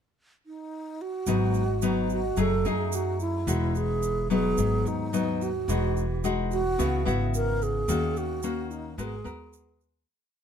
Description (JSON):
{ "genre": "bossa nova", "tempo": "109 BPM", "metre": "4/4", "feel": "straight", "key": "G# minor", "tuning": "A4 = 445 Hz", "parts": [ { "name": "mellow hollow alto flute", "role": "melody", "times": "0.5-9.8 s", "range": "D#4 to A#4", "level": "-30 LUFS", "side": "right 4 dB", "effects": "none" }, { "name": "nylon-string guitar", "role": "accompaniment", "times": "1.3-10.0 s", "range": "G#2 to A#4", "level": "-28 LUFS", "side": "left 4 dB", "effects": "none" }, { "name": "upright bass", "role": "bass", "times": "1.3-10.0 s", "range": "E1 to F#2", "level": "-30 LUFS", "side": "right 1 dB", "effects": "none" }, { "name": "egg shaker", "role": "percussion", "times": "1.3-10.1 s", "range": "none", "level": "-40 LUFS", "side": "right 10 dB", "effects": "none" } ], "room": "light reverb", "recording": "dark, warm production", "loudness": "-24 LUFS", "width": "side -8 dB against mid", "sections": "0.0-1.3 pickup bar; 1.3-10.1 A section", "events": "fade-out 7.9-10.1", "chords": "0.0 N.C.; 1.3 G#m7; 2.4 F#m13; 3.5 Emaj9; 4.6 G#m7; 5.7 Emaj9; 6.8 C#m7; 7.9 D#m7; 9.0 G#m9" }